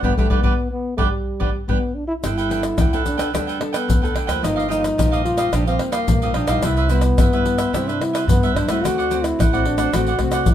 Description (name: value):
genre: samba and choro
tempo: 109 BPM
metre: 4/4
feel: straight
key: G major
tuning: A4 = 440 Hz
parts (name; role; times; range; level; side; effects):
- dark trombone; melody; 0.0-10.5 s; G3 to F#4; -22 LUFS; left 1 dB; none
- cavaquinho; accompaniment; 0.0-10.5 s; D4 to G5; -25 LUFS; right 5 dB; none
- nylon-string guitar; accompaniment; 0.0-10.5 s; G2 to A4; -27 LUFS; left 3 dB; none
- upright bass; bass; 0.0-10.5 s; G1 to G2; -24 LUFS; right 1 dB; none
- surdo, tube shaker, pandeiro and tamborim; percussion; 0.0-10.5 s; none; -21 LUFS; left 1 dB; none
room: moderate studio reverb, RT60 0.7 s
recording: minimal, uncompressed stereo recording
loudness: -17 LUFS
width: side -10 dB against mid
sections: 0.0-2.2 A section; 2.2-10.5 B section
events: band accent 0.0-2.2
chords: 0.0 G; 2.2 Gadd9; 4.4 Ebadd9/G; 6.6 Cmaj7; 8.8 D7